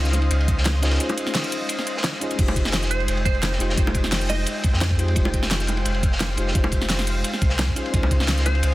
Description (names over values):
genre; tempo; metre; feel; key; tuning
liquid drum and bass; 173 BPM; 4/4; straight; F minor; A4 = 439 Hz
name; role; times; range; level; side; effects
mellow FM electric piano; accompaniment; 0.0-8.7 s; Ab3 to C5; -30 LUFS; left 2 dB; chorus, digital delay
lush unison pad; sustained chords; 0.0-8.7 s; Ab3 to G5; -32 LUFS; equal; chorus
sub bass with octave; bass; 0.0-8.7 s; F1 to F2; -23 LUFS; equal; tube saturation
crunchy breakbeat drum kit; drums; 0.0-8.7 s; hi-hat, ride cymbal, snare drum; -29 LUFS; equal; high-pass filter on cymbals, high-pass filter on hats, high-pass filter on snare, high-pass filter on room
pop drum kit; drums; 0.1-8.7 s; crash cymbal, hi-hat, snare drum; -27 LUFS; equal; none
bongos; percussion; 0.1-8.5 s; none; -30 LUFS; equal; none
electronic kick drum; drums; 0.5-8.2 s; none; -21 LUFS; equal; none
glassy wavetable pluck; melody; 2.9-4.8, 8.5-8.7 s; C5 to Eb5; -30 LUFS; right 4 dB; chorus, cassette tape, digital delay
room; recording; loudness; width
little or no reverb; dense, heavily limited modern master; -19 LUFS; side -17 dB against mid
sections
0.0-8.7 A section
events
break 1.0-2.4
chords
0.0 Dbmaj9; 2.4 Fm9; 7.8 Dbmaj9